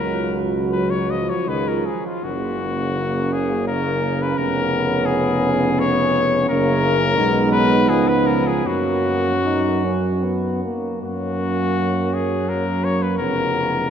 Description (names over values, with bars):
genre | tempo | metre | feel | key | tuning
classical, hymn-like piece for brass band | 74-91 BPM | 3/4 | rubato | F# major | A4 = 440 Hz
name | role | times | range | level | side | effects
warm cornet | melody | 0.0-13.9 s | E#4 to D#5 | -22 LUFS | left 4 dB | none
mellow French horn section | second line | 0.0-13.9 s | C#4 to F#4 | -26 LUFS | right 6 dB | none
clear euphonium | accompaniment | 0.0-13.9 s | F#3 to D#4 | -25 LUFS | left 1 dB | none
mellow euphonium | accompaniment | 0.0-13.9 s | C#3 to G#3 | -25 LUFS | right 2 dB | none
warm tuba | bass | 0.0-13.9 s | E#1 to F#2 | -24 LUFS | equal | none
room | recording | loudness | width
wet cathedral reverb, RT60 4.8 s | dark, warm production | -17 LUFS | side -8 dB against mid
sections
0.0-11.0 A section; 11.0-13.9 B section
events
none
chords
0.0 F#5/C#; 1.5 C#; 2.2 F#; 4.4 C#7/E#; 6.5 F#; 7.2 G#m/B; 7.9 C#9; 8.6 F#; 13.2 C#7/E#